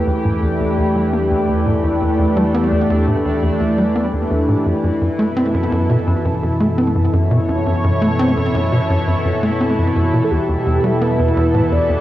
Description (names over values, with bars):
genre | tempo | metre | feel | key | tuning
ambient, sequencer-driven space music | 85 BPM | 4/4 | straight | E minor | A4 = 436 Hz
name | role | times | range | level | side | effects
lush unison pad | sustained chords | 0.0-12.0 s | B2 to C#5 | -17 LUFS | equal | chorus, cassette tape, shimmer reverb
Celtic harp | arpeggios | 0.0-1.7 s | none | barely audible | none | none
tight sequencer bass | riff | 0.0-12.0 s | E2 to C4 | -18 LUFS | equal | cassette tape, tape echo
warm sub bass | bass | 0.0-12.0 s | E2 to F#2 | -25 LUFS | equal | none
pulse-width lead | melody | 10.2-12.0 s | G4 to D5 | -20 LUFS | right 1 dB | chorus, cassette tape, shimmer reverb, tape echo
room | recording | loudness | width
wet small room reverb, RT60 0.5 s | home recording on cassette | -14 LUFS | side -14 dB against mid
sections
0.0-12.0 A section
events
none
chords
0.0 Em7; 4.7 F#m7; 10.3 Em7